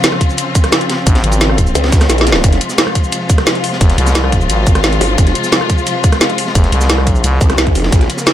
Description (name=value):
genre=dark technical drum and bass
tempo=175 BPM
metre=4/4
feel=straight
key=F minor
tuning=A4 = 445 Hz
part: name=dark symphonic string section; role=sustained chords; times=0.0-8.3 s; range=C3 to F4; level=-18 LUFS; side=left 2 dB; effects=sidechain pumping
part: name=crunchy breakbeat drum kit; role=drums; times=0.0-8.3 s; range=ride cymbal, snare drum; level=-24 LUFS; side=equal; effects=none
part: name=drum and bass drum kit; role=drums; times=0.0-8.3 s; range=hi-hat, rim click, shaker, snare drum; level=-15 LUFS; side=right 1 dB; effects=none
part: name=electronic kick drum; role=drums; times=0.2-8.0 s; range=none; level=-12 LUFS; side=equal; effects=none
part: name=growling FM bass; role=bass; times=1.1-1.7, 3.8-7.4 s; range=F1 to C2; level=-14 LUFS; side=equal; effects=none
part: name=growl bass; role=bass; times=1.8-2.6, 5.0-5.3, 7.4-8.1 s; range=F1 to Db2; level=-14 LUFS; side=equal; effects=chorus, tube saturation
room=small room ambience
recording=none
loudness=-10 LUFS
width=side -12 dB against mid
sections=0.0-8.3 A section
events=drum fill 2.1-2.4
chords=0.0 Bbm; 2.4 Fm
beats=0.04 0.38 0.72 | 1.07 1.41 1.75 2.10 | 2.44 2.78 3.12 3.47 | 3.81 4.15 4.50 4.84 | 5.18 5.53 5.87 6.21 | 6.55 6.90 7.24 7.58 | 7.92 8.27